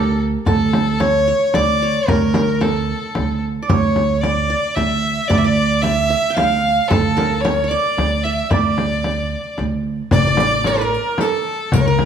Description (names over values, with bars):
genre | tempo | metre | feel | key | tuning
Arabic maqam ensemble | 112 BPM | 3/4 | straight | D maqam nahawand | A4 = 439 Hz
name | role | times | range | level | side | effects
clear violin | melody | 0.0-12.1 s | A4 to F5 | -19 LUFS | equal | slapback echo
qanun | second line | 0.0-12.1 s | G4 to G5 | -23 LUFS | right 4 dB | none
upright bass | bass | 0.0-12.1 s | A1 to D2 | -20 LUFS | right 2 dB | none
frame drum | percussion | 0.5-12.1 s | none | -22 LUFS | left 1 dB | none
darbuka | percussion | 10.1-11.9 s | none | -22 LUFS | left 2 dB | none
riq | percussion | 10.1-11.9 s | none | -29 LUFS | left 2 dB | none
room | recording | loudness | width
moderate recital hall reverb, RT60 1.7 s | studio ambience | -15 LUFS | side -8 dB against mid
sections
0.0-10.1 A section; 10.1-12.1 B section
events
none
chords
none